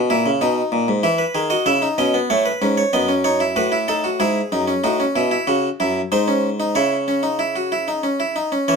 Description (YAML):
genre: classical, baroque-style 3-part fugue for harpsichord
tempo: 94 BPM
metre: 3/4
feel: straight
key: E major, C# minor from 4.8 s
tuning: A4 = 441 Hz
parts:
  - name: harpsichord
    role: solo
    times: 0.0-8.8 s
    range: F#2 to E5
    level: -17 LUFS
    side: equal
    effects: none
room: light reverb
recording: minimal, uncompressed stereo recording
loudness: -17 LUFS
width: side -5 dB against mid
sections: 0.0-4.8 A section; 4.8-8.7 B section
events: none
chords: 0.4 B; 1.0 E; 2.3 A; 2.9 B7/F#; 4.2 E/G#; 4.8 A; 6.1 G#; 6.8 C#m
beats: 0.41 | 1.04 1.67 2.30 | 2.93 3.56 4.20 | 4.84 5.48 6.12 | 6.75 7.40 8.04 | 8.68